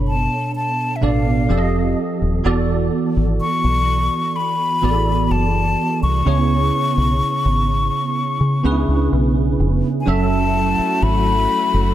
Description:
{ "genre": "contemporary R&B", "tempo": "63 BPM", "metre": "4/4", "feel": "straight", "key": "F# minor", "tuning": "A4 = 439 Hz", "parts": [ { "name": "bell-like tine electric piano", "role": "accompaniment", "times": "0.0-11.9 s", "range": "B2 to E5", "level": "-20 LUFS", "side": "right 3 dB", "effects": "ensemble chorus" }, { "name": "deep dub fingered electric bass", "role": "bass", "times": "0.0-11.9 s", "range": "Eb1 to C#3", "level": "-19 LUFS", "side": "equal", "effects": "none" }, { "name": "breathy mellow silver concert flute", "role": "melody", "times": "0.1-11.9 s", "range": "E5 to C#6", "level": "-21 LUFS", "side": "left 3 dB", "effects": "digital delay" }, { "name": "dark studio string section", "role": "sustained chords", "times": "10.1-11.9 s", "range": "F#3 to F#4", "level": "-25 LUFS", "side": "left 4 dB", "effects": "none" } ], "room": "studio reverb", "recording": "none", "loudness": "-16 LUFS", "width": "side -12 dB against mid", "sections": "0.0-10.1 A section; 10.1-11.9 B section", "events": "none", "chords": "0.0 Bm9; 1.5 F9; 2.5 E9sus4; 6.3 C#m7; 10.1 F#m9" }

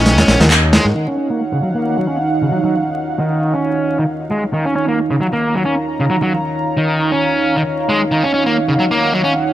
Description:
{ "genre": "breakbeat, breaks", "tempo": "134 BPM", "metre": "4/4", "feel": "swing 54% on 16ths", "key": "Eb minor", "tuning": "A4 = 442 Hz", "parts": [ { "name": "dark analog pad", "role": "sustained chords", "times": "0.0-9.5 s", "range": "Eb3 to Bb5", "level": "-18 LUFS", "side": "right 1 dB", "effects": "chorus" }, { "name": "sludgy distorted guitar", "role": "riff", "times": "0.0-9.3 s", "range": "Db3 to Db4", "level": "-17 LUFS", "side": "equal", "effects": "overdrive, tube saturation, vintage 12-bit sampler grit, low-pass filter, tape echo" }, { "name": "modern bright fingered electric bass", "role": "bass", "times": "0.0-0.9 s", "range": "Bb1 to Ab2", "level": "-14 LUFS", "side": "equal", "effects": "none" }, { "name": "crunchy breakbeat drum kit", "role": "drums", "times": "0.1-0.8 s", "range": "hi-hat, snare drum", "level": "-13 LUFS", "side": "equal", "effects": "none" }, { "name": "electronic handclaps", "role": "drums", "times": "0.5-0.6 s", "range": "none", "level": "-15 LUFS", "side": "equal", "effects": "overdrive, low-pass filter on snare, low-pass filter on room" } ], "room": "moderate small room reverb, RT60 0.5 s", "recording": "vinyl crackle", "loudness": "-13 LUFS", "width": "side -13 dB against mid", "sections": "1.0-9.5 A section", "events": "break 0.1-1.0; band accent 0.5; filter sweep on distorted electric guitar 1.0-9.5", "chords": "0.0 Ebm7" }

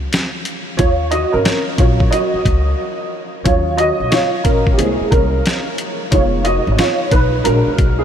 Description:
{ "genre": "hip hop, jazz-hop", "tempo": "90 BPM", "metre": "4/4", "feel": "swing 64% on 16ths", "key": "Eb minor", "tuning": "A4 = 439 Hz", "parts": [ { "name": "dark upright piano", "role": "accompaniment", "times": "0.0-8.0 s", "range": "Gb3 to Eb5", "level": "-17 LUFS", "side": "right 1 dB", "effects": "ensemble chorus" }, { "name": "upright bass", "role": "bass", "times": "0.0-8.0 s", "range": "F1 to Eb2", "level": "-19 LUFS", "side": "equal", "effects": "none" }, { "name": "boom bap sampler-style drum kit", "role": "drums", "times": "0.1-8.0 s", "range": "hi-hat, kick drum, snare drum", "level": "-18 LUFS", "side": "equal", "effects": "none" } ], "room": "moderate huge ambient reverb, RT60 8.1 s", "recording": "dreamy mix soaked in reverb", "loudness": "-13 LUFS", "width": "side -8 dB against mid", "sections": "0.0-3.5 A section; 3.5-8.0 A section", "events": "upright piano solo 0.0-3.5, 3.5-8.0; break 2.8-3.5", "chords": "0.0 Ebm9; 4.8 Caug7; 6.1 Fm7b5; 7.5 Bb7b13" }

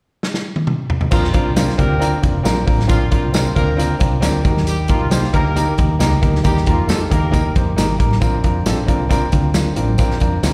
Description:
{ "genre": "uptempo 1960s-style soul", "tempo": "135 BPM", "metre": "4/4", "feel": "straight", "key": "Bb major", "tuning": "A4 = 439 Hz", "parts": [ { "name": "warm soul drum kit", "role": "drums", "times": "0.2-10.5 s", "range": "crash cymbal, hi-hat, kick drum, snare drum, toms", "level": "-20 LUFS", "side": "equal", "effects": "none" }, { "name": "mellow horn section", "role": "second line", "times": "1.1-7.5 s", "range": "F3 to Bb4", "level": "-27 LUFS", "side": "equal", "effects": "slapback echo" }, { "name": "clear grand piano", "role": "accompaniment", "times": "1.1-10.5 s", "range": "Bb3 to C5", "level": "-23 LUFS", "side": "equal", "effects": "slapback echo" }, { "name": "vintage muted fingered electric bass", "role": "bass", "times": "1.1-10.5 s", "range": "F1 to F2", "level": "-21 LUFS", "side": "equal", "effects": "none" }, { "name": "congas", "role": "percussion", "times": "1.1-10.5 s", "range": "none", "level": "-32 LUFS", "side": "equal", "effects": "none" }, { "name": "tambourine", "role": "percussion", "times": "1.1-10.5 s", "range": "none", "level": "-34 LUFS", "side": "equal", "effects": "none" } ], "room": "light reverb", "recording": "live gig heard through the venue's PA, recital hall reverb", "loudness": "-17 LUFS", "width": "mono", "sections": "0.0-1.1 A section; 1.1-8.2 B section; 8.2-10.5 C section", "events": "drum fill 0.2-1.1", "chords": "0.0 N.C.; 1.1 Bbadd9; 4.5 Eb; 8.2 Bbadd9" }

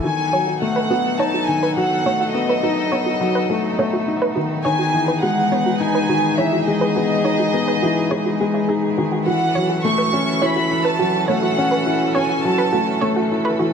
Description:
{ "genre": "electronica", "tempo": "104 BPM", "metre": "4/4", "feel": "straight", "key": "unclear", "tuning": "A4 = 440 Hz", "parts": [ { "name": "warm studio violin section", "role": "melody", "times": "0.0-13.0 s", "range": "D#5 to C#6", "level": "-22 LUFS", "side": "right 1 dB", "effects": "none" }, { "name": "rich string quartet", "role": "sustained chords", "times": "0.0-13.7 s", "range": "E3 to A4", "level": "-26 LUFS", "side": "right 1 dB", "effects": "none" }, { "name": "analog pluck", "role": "arpeggios", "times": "0.0-13.7 s", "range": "E4 to C#5", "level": "-24 LUFS", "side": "right 3 dB", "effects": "chorus, tape echo" }, { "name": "felt-muted upright piano", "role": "riff", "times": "0.0-13.7 s", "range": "D#3 to E4", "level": "-20 LUFS", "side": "left 2 dB", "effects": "tape echo" } ], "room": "moderate concert hall reverb, RT60 2.3 s", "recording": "none", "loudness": "-16 LUFS", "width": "side -7 dB against mid", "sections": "0.0-13.7 A section", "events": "filter sweep on synth arpeggio sound 0.0-13.7", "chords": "0.0 B7; 4.7 Emaj7; 9.3 F#m7" }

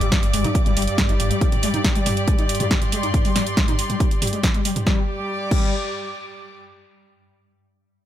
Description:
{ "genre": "driving peak-time techno", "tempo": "139 BPM", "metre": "4/4", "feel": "straight", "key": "unclear", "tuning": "A4 = 440 Hz", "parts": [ { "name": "overdriven synth lead", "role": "riff", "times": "0.0-5.7 s", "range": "G3 to Eb4", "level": "-28 LUFS", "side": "left 2 dB", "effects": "distortion, lush chorus, sidechain pumping, tape echo" }, { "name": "saturated sub bass", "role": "bass", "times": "0.0-1.3 s", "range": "G1", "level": "-25 LUFS", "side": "equal", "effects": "sidechain pumping, low-pass filter" }, { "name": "swarming drone", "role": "drone", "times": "0.0-4.9 s", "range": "G2", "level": "-30 LUFS", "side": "equal", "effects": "built-in reverb, sidechain pumping" }, { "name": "techno drum kit", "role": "drums", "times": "0.0-5.6 s", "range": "crash cymbal, hi-hat, snare drum, toms", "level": "-24 LUFS", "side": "right 1 dB", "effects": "none" }, { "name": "warm chamber string section", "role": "texture", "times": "0.0-6.6 s", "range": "G3 to D6", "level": "-27 LUFS", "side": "equal", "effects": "sidechain pumping" }, { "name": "electronic kick drum", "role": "drums", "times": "0.1-5.6 s", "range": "none", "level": "-20 LUFS", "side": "equal", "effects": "none" } ], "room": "little or no reverb", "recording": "none", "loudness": "-18 LUFS", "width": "side -12 dB against mid", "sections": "0.0-4.9 A section; 4.9-6.6 B section", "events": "filter sweep on analog synth lead 0.0-4.9", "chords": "0.0 G5" }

